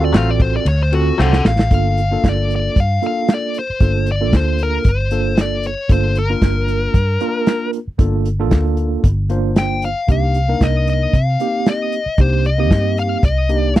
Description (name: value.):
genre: straight-eighth soul blues.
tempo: 115 BPM.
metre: 4/4.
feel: swing 54% on 16ths.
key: G minor.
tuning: A4 = 440 Hz.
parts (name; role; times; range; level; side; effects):
dark smooth lead guitar; melody; 0.0-13.8 s; F#4 to G5; -21 LUFS; left 4 dB; overdrive.
tine electric piano; accompaniment; 0.0-13.8 s; Bb3 to C5; -22 LUFS; right 3 dB; medium stereo tremolo.
vintage muted fingered electric bass; bass; 0.0-13.8 s; G1 to C3; -17 LUFS; equal; none.
direct-recorded clean electric guitar; stabs; 0.1-1.4 s; F#3 to E#4; -22 LUFS; left 6 dB; none.
warm soul drum kit; drums; 0.1-13.8 s; hi-hat, kick drum, ride cymbal, snare drum; -14 LUFS; equal; none.
room: little or no reverb.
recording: dry, close 1970s-style studio recording.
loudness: -14 LUFS.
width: side -14 dB against mid.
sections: 0.0-1.7 A section; 1.7-13.8 B section.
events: lead electric guitar solo 0.0-1.7; drum fill 1.2-1.7.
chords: 0.0 D7#9; 1.7 Gm7; 10.1 Cm7.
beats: 0.13 0.66 1.18 | 1.70 2.23 2.75 3.27 | 3.80 4.32 4.85 5.37 | 5.89 6.42 6.94 7.46 | 7.99 8.51 9.04 9.56 | 10.08 10.61 11.13 11.65 | 12.18 12.70 13.23 13.75.